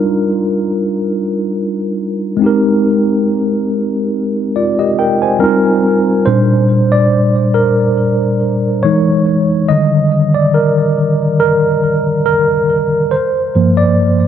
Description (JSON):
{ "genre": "R&B", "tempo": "70 BPM", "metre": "4/4", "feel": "swing 54% on 16ths", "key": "unclear", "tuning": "A4 = 440 Hz", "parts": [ { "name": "mellow tine electric piano", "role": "solo", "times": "0.0-14.3 s", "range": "G2 to Ab5", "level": "-11 LUFS", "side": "equal", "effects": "medium stereo tremolo, digital delay" } ], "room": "moderate lush hall reverb, RT60 2.8 s", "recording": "dark, warm production", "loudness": "-11 LUFS", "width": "side -9 dB against mid", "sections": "0.0-6.3 A section; 6.3-14.3 B section", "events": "tine electric piano solo 6.3-14.3", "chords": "0.0 Ebmaj7; 2.4 Abmaj7; 5.4 F7sus4; 6.3 Bb6; 8.8 Emaj7; 9.7 Ebmaj7; 13.1 Gm7" }